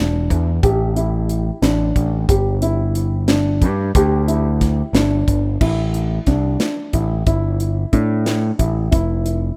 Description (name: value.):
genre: progressive instrumental, band music in an uneven meter.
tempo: 181 BPM (eighths).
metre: 5/8.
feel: straight.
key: unclear.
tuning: A4 = 440 Hz.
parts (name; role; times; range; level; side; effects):
dark baby grand piano; arpeggios; 0.0-9.4 s; D4 to G4; -24 LUFS; equal; tape echo.
overdriven picked electric bass; bass; 0.0-9.5 s; E1 to A2; -20 LUFS; equal; none.
modern studio drum kit; drums; 0.3-9.4 s; crash cymbal, hi-hat, kick drum, snare drum; -22 LUFS; equal; none.
room: light reverb, small room ambience.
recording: rough home demo mix.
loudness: -18 LUFS.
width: mono.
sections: 0.0-5.6 A section; 5.6-9.6 B section.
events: none.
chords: 0.0 E7(no3); 0.6 A5; 2.3 G5; 5.6 A7(no3); 8.9 Fmaj7(no3).